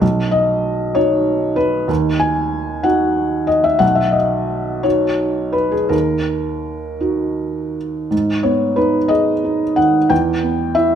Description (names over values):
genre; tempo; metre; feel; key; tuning
neoclassical minimalist piano; 54-65 BPM (dotted quarters); 6/8; rubato; B major; A4 = 440 Hz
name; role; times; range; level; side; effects
felt-muted upright piano; solo; 0.0-11.0 s; B1 to G#5; -15 LUFS; equal; none
room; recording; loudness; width
moderate recital hall reverb, RT60 1.2 s; none; -15 LUFS; side -8 dB against mid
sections
0.0-8.1 A section; 8.1-11.0 B section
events
none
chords
0.0 B; 1.9 D#m; 3.8 B; 5.9 D#m; 8.1 G#m; 10.1 Em